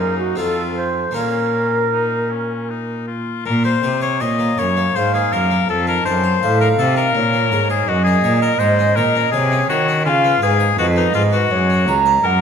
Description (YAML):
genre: classical, baroque-style sonata movement with continuo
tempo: 82 BPM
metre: 3/4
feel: rubato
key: Bb minor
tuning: A4 = 438 Hz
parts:
  - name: clear oboe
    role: melody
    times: 0.0-12.4 s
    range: Db4 to Eb5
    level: -20 LUFS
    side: left 7 dB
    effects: none
  - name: mellow wooden flute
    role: second line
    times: 0.0-12.4 s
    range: Gb4 to Bb5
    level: -20 LUFS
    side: right 3 dB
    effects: none
  - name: harpsichord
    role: accompaniment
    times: 0.0-12.4 s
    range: Db2 to F5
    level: -25 LUFS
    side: left 2 dB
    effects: none
  - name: rich cello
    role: bass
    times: 0.0-12.4 s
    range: Db2 to Eb3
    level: -19 LUFS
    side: right 1 dB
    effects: none
room: wet recital hall reverb, RT60 1.4 s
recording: none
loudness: -15 LUFS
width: side -7 dB against mid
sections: 0.0-3.5 A section; 3.5-12.4 B section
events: none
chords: 0.4 F7; 1.2 Bbm; 5.7 F7; 7.2 Bbm; 7.9 Gb; 10.1 Db7; 11.5 Gb